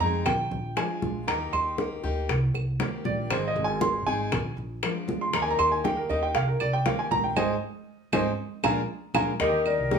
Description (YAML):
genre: latin, Cuban son and guajira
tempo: 118 BPM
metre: 4/4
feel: straight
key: Eb major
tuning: A4 = 440 Hz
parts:
  - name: picked steel-string acoustic guitar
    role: accompaniment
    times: 0.0-10.0 s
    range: Eb3 to Ab4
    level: -32 LUFS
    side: left 4 dB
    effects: none
  - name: warm baby grand piano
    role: arpeggios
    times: 0.0-10.0 s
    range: Eb3 to C6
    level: -27 LUFS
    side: right 3 dB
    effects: none
  - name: upright bass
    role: bass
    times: 0.0-10.0 s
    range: Ab1 to F2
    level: -31 LUFS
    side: right 1 dB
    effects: none
  - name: bongos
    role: percussion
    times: 0.0-10.0 s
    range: none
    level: -32 LUFS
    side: left 4 dB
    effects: none
  - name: congas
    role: percussion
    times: 0.0-10.0 s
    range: none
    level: -33 LUFS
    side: equal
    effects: none
  - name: claves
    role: percussion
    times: 0.3-9.9 s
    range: none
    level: -35 LUFS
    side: right 5 dB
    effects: none
  - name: marimba with medium mallets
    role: melody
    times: 9.4-10.0 s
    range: Bb4 to D5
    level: -26 LUFS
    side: left 4 dB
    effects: none
  - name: bright silver concert flute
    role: second line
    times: 9.4-10.0 s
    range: G4 to Bb4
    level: -31 LUFS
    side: right 4 dB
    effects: none
room: moderate large studio reverb, RT60 0.9 s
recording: small room ambience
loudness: -24 LUFS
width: side -6 dB against mid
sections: 0.0-9.4 A section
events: grand piano solo 0.0-9.4; band accent 7.4-9.4; drum fill 8.4-9.4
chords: 0.3 Bb7; 1.3 Eb; 2.3 Cm7; 3.3 Ab; 4.3 Bb7; 5.3 Eb; 6.4 Cm7; 7.4 Ab; 8.4 Bb7; 9.4 Eb